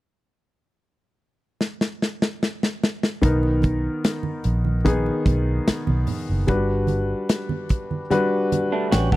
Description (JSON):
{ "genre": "lush 1970s-style soul", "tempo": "74 BPM", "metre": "4/4", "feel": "straight", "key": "B major", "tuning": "A4 = 440 Hz", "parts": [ { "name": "modern studio drum kit", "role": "drums", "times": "1.6-9.2 s", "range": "hi-hat, kick drum, snare drum", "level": "-22 LUFS", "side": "equal", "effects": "none" }, { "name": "warm concert grand piano", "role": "accompaniment", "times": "3.2-9.2 s", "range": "D#3 to G5", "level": "-23 LUFS", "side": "left 2 dB", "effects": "none" }, { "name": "vintage muted fingered electric bass", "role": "bass", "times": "3.2-9.2 s", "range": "F#1 to B1", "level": "-22 LUFS", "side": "equal", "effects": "none" }, { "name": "congas", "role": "percussion", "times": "3.2-9.2 s", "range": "none", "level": "-29 LUFS", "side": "right 4 dB", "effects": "none" }, { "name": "electric guitar through a small old amp", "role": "riff", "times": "8.7-9.2 s", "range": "A3 to G4", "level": "-24 LUFS", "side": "right 4 dB", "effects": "none" } ], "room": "small room ambience", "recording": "dry, close 1970s-style studio recording", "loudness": "-20 LUFS", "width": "side -17 dB against mid", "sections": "0.0-3.2 A section; 3.2-9.2 B section", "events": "drum fill 1.6-3.2", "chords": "0.0 N.C.; 3.2 Bmaj7; 6.5 Gmaj7", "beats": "0.80 1.61 2.42 | 3.23 4.05 4.86 5.67 | 6.49 7.30 8.11 8.92" }